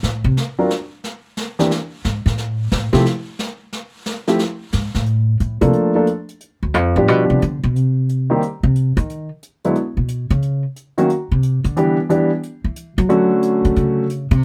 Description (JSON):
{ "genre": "jazz piano trio", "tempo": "179 BPM", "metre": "4/4", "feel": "swing 65% on 8ths", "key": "unclear", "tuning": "A4 = 440 Hz", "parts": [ { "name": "upright bass", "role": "bass", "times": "0.0-14.4 s", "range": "D2 to F#3", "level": "-19 LUFS", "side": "equal", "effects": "none" }, { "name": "jazz brush drum kit", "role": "drums", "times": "0.0-14.4 s", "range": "brushed snare drum, hi-hat, snare drum", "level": "-30 LUFS", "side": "equal", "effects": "none" }, { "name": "warm concert grand piano", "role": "melody", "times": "0.6-14.0 s", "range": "D3 to A#4", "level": "-18 LUFS", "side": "equal", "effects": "none" } ], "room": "light reverb", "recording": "none", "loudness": "-18 LUFS", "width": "mono", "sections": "0.0-5.1 A section; 5.1-14.4 A section", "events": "upright bass solo 0.0-14.4", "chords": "0.4 N.C.; 5.1 Bbmaj7; 6.4 G7; 7.7 N.C.; 9.8 Bsus2; 10.4 N.C.; 11.8 Em7; 12.4 Esus2; 13.1 Dmaj7", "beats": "0.02 0.36 0.69 | 1.03 1.37 1.70 2.04 | 2.37 2.71 3.04 3.38 | 3.71 4.05 4.39 4.72 | 5.06 5.39 5.73 6.07 | 6.40 6.74 7.07 7.41 | 7.74 8.08 8.41 8.75 | 9.08 9.42 9.75 10.09 | 10.42 10.76 11.09 11.43 | 11.76 12.09 12.43 12.76 | 13.09 13.43 13.76 14.10 | 14.43" }